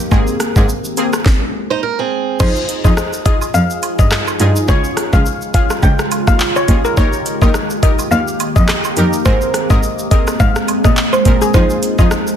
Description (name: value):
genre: dancehall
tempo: 105 BPM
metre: 4/4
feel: swing 56% on 16ths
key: F minor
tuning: A4 = 440 Hz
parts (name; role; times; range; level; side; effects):
- deep dark ambient pad; sustained chords; 0.0-12.4 s; Db3 to Ab4; -22 LUFS; right 1 dB; chorus, built-in reverb
- synth brass stab; accompaniment; 0.1-12.1 s; Bb3 to Bb4; -20 LUFS; left 1 dB; chorus
- warm cello; bass; 0.1-12.1 s; Db2 to Bb2; -18 LUFS; equal; none
- island pop drum kit; drums; 0.1-12.4 s; crash cymbal, handclaps, hi-hat, kick drum, rim click, shaker, snare drum; -14 LUFS; equal; none
- woodblock and cabasa; percussion; 0.1-12.1 s; none; -27 LUFS; right 12 dB; none
- picked swing-style acoustic guitar; arpeggios; 1.7-2.4 s; C4 to C5; -16 LUFS; right 9 dB; none
- steel pan; melody; 2.4-12.1 s; Ab4 to G5; -19 LUFS; left 3 dB; ping-pong delay
room: small room ambience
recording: dense, heavily limited modern master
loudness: -12 LUFS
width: side -9 dB against mid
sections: 0.0-2.4 A section; 2.4-12.4 B section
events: none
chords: 0.1 Abadd9; 2.4 Fm7; 4.7 Db; 7.0 Eb; 9.3 Abadd9; 11.5 Fm7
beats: | 0.12 0.69 1.26 1.83 | 2.40 2.97 3.54 4.12 | 4.69 5.26 5.83 6.40 | 6.97 7.54 8.12 8.69 | 9.26 9.83 10.40 10.97 | 11.54 12.12